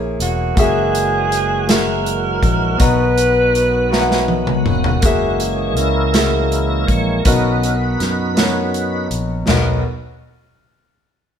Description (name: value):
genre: slow gospel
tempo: 54 BPM (dotted quarters)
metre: 6/8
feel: straight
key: B major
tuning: A4 = 437 Hz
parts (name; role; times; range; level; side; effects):
- clear concert grand piano; accompaniment; 0.0-9.8 s; B1 to A#5; -20 LUFS; left 1 dB; none
- fingered electric bass; bass; 0.0-9.8 s; E1 to F#2; -21 LUFS; equal; none
- warm alto saxophone; melody; 0.2-4.7 s; F#4 to B4; -18 LUFS; right 1 dB; none
- natural country drum kit; drums; 0.2-9.7 s; crash cymbal, hi-hat, kick drum, snare drum, toms; -18 LUFS; equal; none
- tonewheel organ; sustained chords; 0.6-9.8 s; D#3 to C#5; -22 LUFS; right 1 dB; slow rotary speaker, chorus vibrato
room: moderate stone room reverb, RT60 1.2 s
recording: band playing live in one room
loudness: -14 LUFS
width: side -8 dB against mid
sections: 0.0-5.0 A section; 5.0-9.5 B section; 9.5-11.4 C section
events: drum fill 3.9-5.0; tonewheel organ solo 5.0-9.5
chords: 0.0 A#m7b5; 0.6 F#9; 2.8 Bmaj7; 5.0 F#9; 7.3 Bmaj7